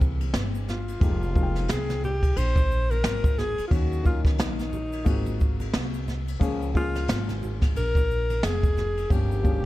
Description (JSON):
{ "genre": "hip hop, jazz-hop", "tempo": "89 BPM", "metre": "4/4", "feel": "swing 59% on 16ths", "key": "unclear", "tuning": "A4 = 442 Hz", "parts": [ { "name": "warm alto saxophone", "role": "melody", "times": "0.0-9.7 s", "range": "C4 to C5", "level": "-30 LUFS", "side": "left 1 dB", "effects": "tape echo" }, { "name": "dark grand piano", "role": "accompaniment", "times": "0.0-9.7 s", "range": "Eb3 to G5", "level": "-33 LUFS", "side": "left 5 dB", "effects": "none" }, { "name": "upright bass", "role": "bass", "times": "0.0-9.7 s", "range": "F1 to Eb2", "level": "-28 LUFS", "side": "equal", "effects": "none" }, { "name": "jazz brush drum kit", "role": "drums", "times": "0.0-9.6 s", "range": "hi-hat, kick drum, ride cymbal, snare drum", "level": "-25 LUFS", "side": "equal", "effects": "vintage 12-bit sampler grit" }, { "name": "egg shaker and congas", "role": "percussion", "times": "0.0-9.6 s", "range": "none", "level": "-41 LUFS", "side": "right 4 dB", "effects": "none" } ], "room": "studio ambience", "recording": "dark, warm production", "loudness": "-22 LUFS", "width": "side -16 dB against mid", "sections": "0.0-9.7 A section", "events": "none", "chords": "0.0 C7b13; 1.0 Fm11; 3.7 Ebm7; 5.1 Ab13; 6.4 Db6; 9.1 Gm7b5", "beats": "0.34 | 1.02 1.69 2.36 3.04 | 3.71 4.39 5.06 5.74 | 6.41 7.08 7.76 8.43 | 9.11" }